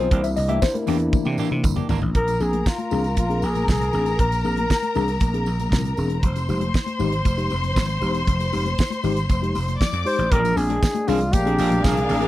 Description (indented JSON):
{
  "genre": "disco",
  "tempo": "118 BPM",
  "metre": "4/4",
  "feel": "straight",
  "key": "unclear",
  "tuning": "A4 = 440 Hz",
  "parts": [
    { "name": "mellow tine electric piano", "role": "accompaniment", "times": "0.0-12.3 s", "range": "Bb2 to E5", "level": "-26 LUFS", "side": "left 4 dB", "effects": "medium stereo tremolo" },
    { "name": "semi-hollow electric guitar", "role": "accompaniment", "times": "0.0-2.1, 10.3-12.3 s", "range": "E3 to Bb4", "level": "-29 LUFS", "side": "right 8 dB", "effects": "lush chorus" },
    { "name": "warm French horn section", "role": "sustained chords", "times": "0.0-2.1, 10.3-12.3 s", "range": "C3 to E4", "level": "-30 LUFS", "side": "right 1 dB", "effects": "none" },
    { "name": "vintage slap bass", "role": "bass", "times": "0.0-12.3 s", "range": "E1 to C3", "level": "-24 LUFS", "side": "right 1 dB", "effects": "none" },
    { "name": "damped 70s drum kit", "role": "drums", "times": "0.1-12.3 s", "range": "hi-hat, kick drum, snare drum, toms", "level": "-22 LUFS", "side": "right 1 dB", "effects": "none" },
    { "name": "congas", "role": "percussion", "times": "0.1-12.2 s", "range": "none", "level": "-33 LUFS", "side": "left 6 dB", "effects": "none" },
    { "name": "tambourine", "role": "percussion", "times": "0.2-12.2 s", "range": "none", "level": "-42 LUFS", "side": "right 10 dB", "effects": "none" },
    { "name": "warm studio string section", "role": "second line", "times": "2.1-12.3 s", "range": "D4 to D6", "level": "-27 LUFS", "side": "left 2 dB", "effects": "none" },
    { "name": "breathy flugelhorn", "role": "melody", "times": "2.2-5.2, 10.1-12.3 s", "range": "F4 to C5", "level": "-24 LUFS", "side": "left 1 dB", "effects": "none" }
  ],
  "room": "little or no reverb",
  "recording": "dry, close 1970s-style studio recording",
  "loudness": "-19 LUFS",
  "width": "side -15 dB against mid",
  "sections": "0.0-2.2 A section; 2.2-10.3 B section; 10.3-12.3 C section",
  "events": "tine electric piano solo 0.0-2.2; drum fill 1.1-2.2",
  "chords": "0.1 C9; 2.2 Bb7; 6.2 Fm7; 10.3 Bb7"
}